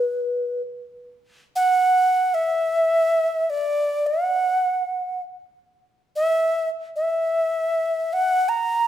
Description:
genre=hawaiian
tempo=free time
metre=none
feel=none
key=unclear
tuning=A4 = 439 Hz
part: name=breathy alto ocarina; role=solo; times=0.0-8.9 s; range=B4 to A#5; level=-19 LUFS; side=equal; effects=none
room=wet recital hall reverb, RT60 1.4 s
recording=minimal, uncompressed stereo recording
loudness=-19 LUFS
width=side -11 dB against mid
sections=0.0-1.2 A section; 1.2-8.9 B section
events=none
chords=none

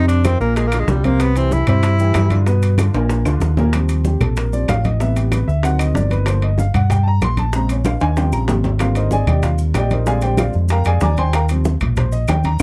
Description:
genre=Afro-Cuban jazz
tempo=189 BPM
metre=4/4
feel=straight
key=Eb major from 3.7 s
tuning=A4 = 439 Hz
part: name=clear tenor saxophone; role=melody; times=0.0-2.4 s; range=G3 to E4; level=-23 LUFS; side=equal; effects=none
part: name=warm upright piano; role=accompaniment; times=0.0-12.6 s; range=Bb2 to D6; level=-24 LUFS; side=equal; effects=none
part: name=fingered electric bass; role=bass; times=0.0-12.6 s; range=G1 to G2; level=-19 LUFS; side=equal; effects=none
part: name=congas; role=percussion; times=0.1-12.6 s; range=none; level=-26 LUFS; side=equal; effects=none
part: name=maracas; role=percussion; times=0.1-12.6 s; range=none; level=-42 LUFS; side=equal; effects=none
part: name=timbales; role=percussion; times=0.1-12.6 s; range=none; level=-29 LUFS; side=equal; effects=none
part: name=claves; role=percussion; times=0.2-12.6 s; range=none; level=-34 LUFS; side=equal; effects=none
part: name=bongos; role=percussion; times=0.3-12.6 s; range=none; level=-29 LUFS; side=equal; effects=none
room=light reverb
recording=dark, warm production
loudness=-17 LUFS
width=mono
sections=0.0-3.7 A section; 3.7-12.6 A section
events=tenor saxophone solo 0.0-3.7; drum fill 2.9-3.7, 7.9-8.8; upright piano solo 3.7-12.6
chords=0.0 F5; 0.6 Bbadd9; 1.2 C; 2.5 G7; 3.1 Bb; 3.7 Eb69; 5.0 Am7; 5.6 D7b9; 6.3 Gm7; 7.5 Bbm9; 8.2 Eb13; 8.8 Abmaj9#11; 10.1 Bb13; 11.3 Eb69

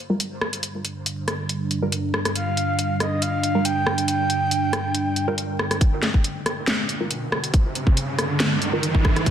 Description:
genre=deep dubstep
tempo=139 BPM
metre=4/4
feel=swing 53% on 16ths, half-time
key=unclear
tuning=A4 = 440 Hz
part: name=deep dark ambient pad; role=sustained chords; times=0.5-9.3 s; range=G3 to D4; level=-27 LUFS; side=right 2 dB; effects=chorus, built-in reverb
part: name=filtered dub chord stab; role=stabs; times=0.1-8.8 s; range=G3 to Bb4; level=-28 LUFS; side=right 1 dB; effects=phaser, dub echo
part: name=garage drum kit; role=drums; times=0.2-9.3 s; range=hi-hat, rim click, snare drum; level=-24 LUFS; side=equal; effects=soft clipping on snare
part: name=breathy flute-like synth lead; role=melody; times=2.4-5.3 s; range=Eb5 to G5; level=-26 LUFS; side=equal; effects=chorus, dub echo
part: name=electronic kick drum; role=drums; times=5.8-9.3 s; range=none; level=-18 LUFS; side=equal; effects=none
part: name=riser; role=sound effects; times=6.6-9.3 s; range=none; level=-27 LUFS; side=right 2 dB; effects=none
room=wet echo chamber reverb, RT60 1.3 s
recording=dense, heavily limited modern master, vinyl crackle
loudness=-20 LUFS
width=side -9 dB against mid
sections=0.0-5.8 A section; 5.8-9.3 B section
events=filter sweep on synth stab 0.0-5.8, 5.8-9.3; filter sweep on ambient pad 0.0-5.8, 5.8-9.3; build-up 5.8-9.3; riser 6.6-9.3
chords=0.0 G7(no3); 5.8 G5

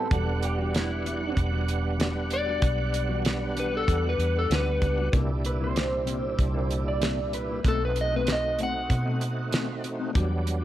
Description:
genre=straight-eighth soul blues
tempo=96 BPM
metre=4/4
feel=straight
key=unclear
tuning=A4 = 440 Hz
part: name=electric guitar through a small old amp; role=second line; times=0.0-1.4, 5.5-7.6 s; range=E4 to D5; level=-32 LUFS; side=right 3 dB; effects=analog chorus
part: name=overdriven tonewheel organ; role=accompaniment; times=0.0-10.6 s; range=Bb2 to F#5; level=-32 LUFS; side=right 3 dB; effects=slow rotary speaker, chorus vibrato
part: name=mellow electric guitar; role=stabs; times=0.0-10.6 s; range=B2 to B4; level=-36 LUFS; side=left 5 dB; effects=analog chorus, analog delay
part: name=vintage muted fingered electric bass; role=bass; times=0.0-10.6 s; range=E1 to B2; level=-28 LUFS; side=equal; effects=none
part: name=damped 70s drum kit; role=drums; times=0.1-10.6 s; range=hi-hat, kick drum, snare drum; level=-27 LUFS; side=equal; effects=none
part: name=electric slide guitar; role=melody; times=2.3-9.8 s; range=A4 to F#5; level=-29 LUFS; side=left 2 dB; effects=none
room=small room reverb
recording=none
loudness=-24 LUFS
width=side -13 dB against mid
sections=0.0-10.6 A section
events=none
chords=0.1 Em9; 5.1 C7; 7.6 B7b9

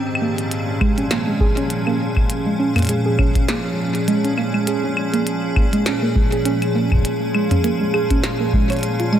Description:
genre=IDM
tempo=101 BPM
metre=4/4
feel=swing 56% on 16ths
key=Bb minor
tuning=A4 = 440 Hz
part: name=icy glass pad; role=sustained chords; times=0.0-9.2 s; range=Bb2 to Ab4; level=-21 LUFS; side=equal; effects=chorus, built-in reverb
part: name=soft round pluck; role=arpeggios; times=0.0-9.2 s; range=Ab3 to Db5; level=-21 LUFS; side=right 2 dB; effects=chorus, tape echo
part: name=glitchy drum kit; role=drums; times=0.2-9.2 s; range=claves, hi-hat, snare drum, toms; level=-26 LUFS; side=left 1 dB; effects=tape echo
part: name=electronic kick drum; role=drums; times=0.8-8.7 s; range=none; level=-18 LUFS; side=equal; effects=none
room=wet cathedral reverb, RT60 6.9 s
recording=dreamy mix soaked in reverb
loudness=-16 LUFS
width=side -10 dB against mid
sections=0.0-9.2 A section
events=none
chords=0.0 Bbm7

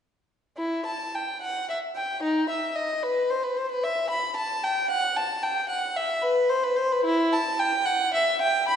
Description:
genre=classical, baroque-style suite movement for unaccompanied violin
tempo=74 BPM (dotted quarters)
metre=6/8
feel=rubato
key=E minor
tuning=A4 = 439 Hz
part: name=warm violin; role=solo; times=0.6-8.8 s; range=D#4 to B5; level=-23 LUFS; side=equal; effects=none
room=wet recital hall reverb, RT60 1.7 s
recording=nothing above 10.7 kHz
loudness=-23 LUFS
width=side -8 dB against mid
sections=0.6-8.8 A section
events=none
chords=none

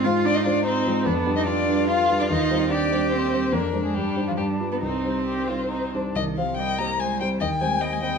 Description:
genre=quick classical-period movement for piano quartet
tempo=132-149 BPM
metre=3/4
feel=rubato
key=C minor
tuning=A4 = 440 Hz
part: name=warm violin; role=melody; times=0.0-8.2 s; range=F4 to Bb5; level=-26 LUFS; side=left 6 dB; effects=none
part: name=rich cello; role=second line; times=0.0-8.2 s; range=Eb3 to F4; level=-26 LUFS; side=right 6 dB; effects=none
part: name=rich violin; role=second line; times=0.0-8.2 s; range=D4 to G5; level=-30 LUFS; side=left 2 dB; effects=none
part: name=dark concert grand piano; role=accompaniment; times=0.0-8.2 s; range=C2 to C5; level=-26 LUFS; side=left 1 dB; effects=none
room=moderate recital hall reverb, RT60 1.7 s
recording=dark, warm production, nothing above 10.6 kHz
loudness=-21 LUFS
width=side -6 dB against mid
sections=0.0-6.2 A section; 6.2-8.2 A section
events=none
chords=0.0 Fm/Ab; 1.1 G7/F; 2.3 Cm/Eb; 3.5 Dm7b5/F; 3.9 Cm/G; 4.4 G7; 4.8 Cm; 7.4 Cm/Eb

